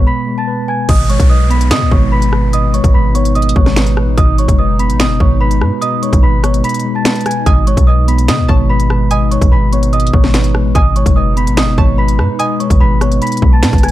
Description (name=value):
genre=hip hop, drill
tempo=146 BPM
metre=4/4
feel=half-time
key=G# phrygian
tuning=A4 = 439 Hz
part: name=celesta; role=melody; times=0.0-13.9 s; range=C#5 to B6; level=-19 LUFS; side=equal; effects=none
part: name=mellow tine electric piano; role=accompaniment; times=0.0-13.9 s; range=B2 to B4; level=-18 LUFS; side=left 1 dB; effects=slow stereo tremolo
part: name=long sustained 808-style bass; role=bass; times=0.0-13.9 s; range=F#1 to D#3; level=-13 LUFS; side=equal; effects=none
part: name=hollow soft pad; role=sustained chords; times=0.9-13.9 s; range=B2 to D#4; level=-24 LUFS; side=right 1 dB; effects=chorus
part: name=drill drum kit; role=drums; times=0.9-13.9 s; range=crash cymbal, finger snaps, hi-hat, kick drum, rim click, snare drum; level=-13 LUFS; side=equal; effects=none
part: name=downlifter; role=sound effects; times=0.9-4.2 s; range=none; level=-29 LUFS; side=equal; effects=none
part: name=string-like resonator pluck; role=second line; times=7.5-13.2 s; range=G#5 to A5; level=-25 LUFS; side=right 1 dB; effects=chorus, digital delay
room=little or no reverb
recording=dark, warm production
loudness=-10 LUFS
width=side -14 dB against mid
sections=0.9-13.9 A section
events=break 0.1-0.9, 6.6-7.5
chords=0.0 G#m